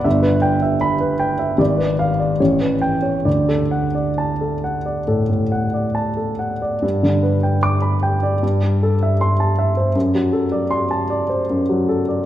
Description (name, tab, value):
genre	classical, romantic character piece for solo piano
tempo	64-81 BPM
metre	4/4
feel	rubato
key	D major, G major from 6.8 s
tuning	A4 = 440 Hz
part	warm baby grand piano	solo	0.0-12.3 s	G1 to D6	-16 LUFS	equal	none
room	wet concert hall reverb, RT60 2.0 s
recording	none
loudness	-16 LUFS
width	side -12 dB against mid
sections	0.0-6.8 A section; 6.8-12.3 B section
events	none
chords	0.1 Em/G; 1.6 G#dim7; 2.4 A9; 3.3 D; 6.8 G; 8.4 Am7/G; 10.0 D7/F#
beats	| 0.05 0.82 1.60 2.40 | 3.26 4.18 5.07 5.95 | 6.83 7.63 8.43 9.20 | 9.95 10.71 11.49